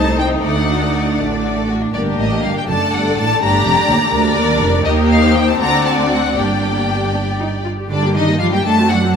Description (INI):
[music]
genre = quick classical-period movement for string orchestra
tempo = 80 BPM (dotted quarters)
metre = 6/8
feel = rubato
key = G minor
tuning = A4 = 440 Hz
[part]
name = rich symphonic violin section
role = melody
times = 0.0-9.1 s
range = D5 to Bb5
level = -19 LUFS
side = left 4 dB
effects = none
[part]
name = rich symphonic violin section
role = second line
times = 0.0-9.0 s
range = A3 to D5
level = -20 LUFS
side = left 4 dB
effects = none
[part]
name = rich studio viola section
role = accompaniment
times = 0.0-9.1 s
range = G3 to G4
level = -20 LUFS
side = equal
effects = none
[part]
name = rich symphonic cello section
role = bass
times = 0.0-9.1 s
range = C2 to A3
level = -20 LUFS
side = right 3 dB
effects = none
[part]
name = rich symphonic double bass section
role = bass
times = 0.0-9.2 s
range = F1 to G2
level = -21 LUFS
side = right 2 dB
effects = none
[sound]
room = wet scoring stage reverb, RT60 1.8 s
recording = none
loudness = -13 LUFS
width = side -7 dB against mid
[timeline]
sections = 0.0-7.9 A section; 7.9-9.2 B section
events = none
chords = 0.4 D; 1.9 Gm; 2.7 D; 3.4 Gm; 4.8 Eb; 5.6 D7; 6.4 Gm; 8.6 D7/F#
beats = | 0.43 1.18 | 1.93 2.68 | 3.42 4.13 | 4.85 5.60 | 6.36 7.14 | 7.90 8.65